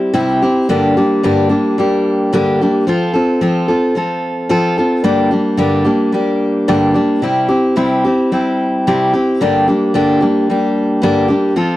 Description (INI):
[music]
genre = rock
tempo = 110 BPM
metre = 4/4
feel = straight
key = G dorian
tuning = A4 = 438 Hz
[part]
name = picked steel-string acoustic guitar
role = solo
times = 0.0-11.8 s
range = G2 to A4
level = -12 LUFS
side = equal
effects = none
[sound]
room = light reverb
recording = dry, close 1970s-style studio recording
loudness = -12 LUFS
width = side -16 dB against mid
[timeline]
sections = 0.0-5.0 A section; 5.0-11.8 A section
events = none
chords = 0.0 C; 0.7 Gm; 2.9 F; 5.0 Gm; 7.2 C; 9.4 Gm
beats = 0.15 | 0.70 1.24 1.78 2.33 | 2.87 3.42 3.96 4.50 | 5.05 5.59 6.13 6.68 | 7.22 7.76 8.31 8.85 | 9.40 9.94 10.48 11.03 | 11.57